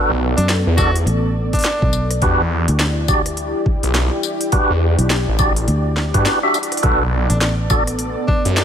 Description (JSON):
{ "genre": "glitch hop", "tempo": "104 BPM", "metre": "4/4", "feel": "swing 61% on 16ths", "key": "B minor", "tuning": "A4 = 443 Hz", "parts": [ { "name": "dark analog pad", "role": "sustained chords", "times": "0.0-8.6 s", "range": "B3 to D5", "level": "-25 LUFS", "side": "equal", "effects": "chorus, sidechain pumping" }, { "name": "tonewheel organ", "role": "stabs", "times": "0.0-7.8 s", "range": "D4 to E5", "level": "-20 LUFS", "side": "right 1 dB", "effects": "overdrive, fast rotary speaker, vintage 12-bit sampler grit, sidechain pumping, dub echo" }, { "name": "phased detuned saw bass", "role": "bass", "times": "0.1-8.6 s", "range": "A1 to G2", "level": "-17 LUFS", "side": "equal", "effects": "phaser" }, { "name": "clear tenor saxophone", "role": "melody", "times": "0.4-2.1, 7.3-8.6 s", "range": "D4 to F#4", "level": "-25 LUFS", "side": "equal", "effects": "dub echo" }, { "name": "fingered electric bass", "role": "bass", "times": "0.4-8.1 s", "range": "A1 to F#2", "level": "-19 LUFS", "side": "equal", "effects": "none" }, { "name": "drum and bass drum kit", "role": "drums", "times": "0.4-8.6 s", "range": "hi-hat, rim click, snare drum, tambourine", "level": "-22 LUFS", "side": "left 1 dB", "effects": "none" }, { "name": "electronic kick drum", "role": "drums", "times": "0.8-8.4 s", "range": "none", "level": "-19 LUFS", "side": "equal", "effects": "overdrive" } ], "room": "light reverb", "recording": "none", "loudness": "-15 LUFS", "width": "side -8 dB against mid", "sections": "0.0-8.6 A section", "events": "drum fill 6.5", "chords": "0.0 Bm7; 2.2 Em7; 6.8 Bm7" }